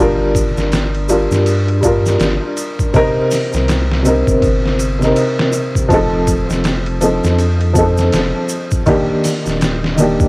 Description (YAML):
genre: trip hop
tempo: 81 BPM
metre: 4/4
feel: swing 60% on 16ths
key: G minor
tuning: A4 = 441 Hz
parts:
  - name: dark upright piano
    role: accompaniment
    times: 0.0-10.3 s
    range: C3 to Bb4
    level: -14 LUFS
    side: equal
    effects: tremolo, cassette tape, tape echo
  - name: round analog bass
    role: bass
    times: 0.0-10.3 s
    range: Eb1 to G2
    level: -17 LUFS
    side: equal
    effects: none
  - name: trip hop sampler-style drum kit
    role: drums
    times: 0.3-10.3 s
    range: hi-hat, kick drum, ride cymbal, snare drum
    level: -19 LUFS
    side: equal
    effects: overdrive
  - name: egg shaker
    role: percussion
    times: 0.4-10.3 s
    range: none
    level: -28 LUFS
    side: right 1 dB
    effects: none
room: light reverb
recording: home recording on cassette, vinyl crackle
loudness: -12 LUFS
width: side -25 dB against mid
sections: 0.0-10.3 A section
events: none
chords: 0.0 Gm7; 2.9 Cm7; 5.9 F7; 8.9 Ebmaj7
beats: 0.72 1.46 2.20 | 2.94 3.68 4.42 5.16 | 5.91 6.64 7.39 8.13 | 8.87 9.61